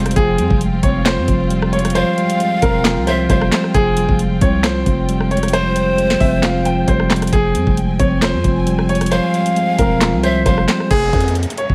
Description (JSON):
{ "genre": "hip hop, trap", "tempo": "134 BPM", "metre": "4/4", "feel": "half-time", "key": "F minor", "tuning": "A4 = 440 Hz", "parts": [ { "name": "clear concert grand piano", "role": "melody", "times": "0.0-11.7 s", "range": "Ab4 to G5", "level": "-22 LUFS", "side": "equal", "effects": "low-pass filter, digital delay" }, { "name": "breathy pan flute", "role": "second line", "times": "0.0-10.9 s", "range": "C5 to F5", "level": "-24 LUFS", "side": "equal", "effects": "digital delay" }, { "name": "mellow tine electric piano", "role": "accompaniment", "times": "0.0-10.9 s", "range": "F3 to F4", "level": "-21 LUFS", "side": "equal", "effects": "low-pass filter" }, { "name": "warm symphonic string section", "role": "sustained chords", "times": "0.0-10.9 s", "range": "F3 to Ab5", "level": "-31 LUFS", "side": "equal", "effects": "none" }, { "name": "growling 808-style bass", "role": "bass", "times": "0.0-11.7 s", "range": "E1 to F2", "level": "-22 LUFS", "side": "equal", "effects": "none" }, { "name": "trap drum kit", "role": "drums", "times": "0.0-11.7 s", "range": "crash cymbal, handclaps, hi-hat, kick drum, rim click, snare drum", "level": "-21 LUFS", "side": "equal", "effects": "none" }, { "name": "downlifter", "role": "sound effects", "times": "10.9-11.7 s", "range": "none", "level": "-30 LUFS", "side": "equal", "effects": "none" } ], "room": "light reverb", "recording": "vinyl crackle", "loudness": "-16 LUFS", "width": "mono", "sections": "0.0-10.9 A section", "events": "none", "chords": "0.0 Fmadd9; 10.9 Fm" }